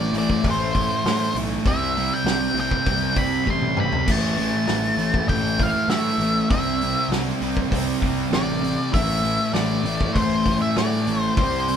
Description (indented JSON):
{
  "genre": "quiet-loud alternative rock",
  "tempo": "99 BPM",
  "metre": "4/4",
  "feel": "straight",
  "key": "A minor",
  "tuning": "A4 = 440 Hz",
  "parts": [
    { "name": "octave-fuzz lead guitar", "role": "melody", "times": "0.0-11.8 s", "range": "C5 to C6", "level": "-24 LUFS", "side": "left 1 dB", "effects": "distortion" },
    { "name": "distorted electric guitar", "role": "riff", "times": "0.0-11.8 s", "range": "A2 to C4", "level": "-29 LUFS", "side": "left 7 dB", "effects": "distortion" },
    { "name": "fuzz guitar", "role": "riff", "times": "0.0-11.8 s", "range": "A2 to C4", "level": "-29 LUFS", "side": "equal", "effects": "distortion" },
    { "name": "thick fuzz guitar", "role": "riff", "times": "0.0-11.8 s", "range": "A2 to C4", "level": "-26 LUFS", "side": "right 5 dB", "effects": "distortion" },
    { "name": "fuzz picked electric bass", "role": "bass", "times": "0.0-11.8 s", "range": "A1 to A2", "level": "-28 LUFS", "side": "left 1 dB", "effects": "overdrive" },
    { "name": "loose indie drum kit", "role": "drums", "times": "0.1-11.8 s", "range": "crash cymbal, hi-hat, kick drum, snare drum, toms", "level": "-26 LUFS", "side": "equal", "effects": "none" }
  ],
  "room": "moderate studio reverb, RT60 0.7 s",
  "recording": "band playing live in one room",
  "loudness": "-19 LUFS",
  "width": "side -8 dB against mid",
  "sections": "0.0-11.8 A section",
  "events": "drum fill 3.5-4.1",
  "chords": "0.0 Am; 1.7 C5; 4.1 A5; 6.5 Cadd9; 8.9 A5"
}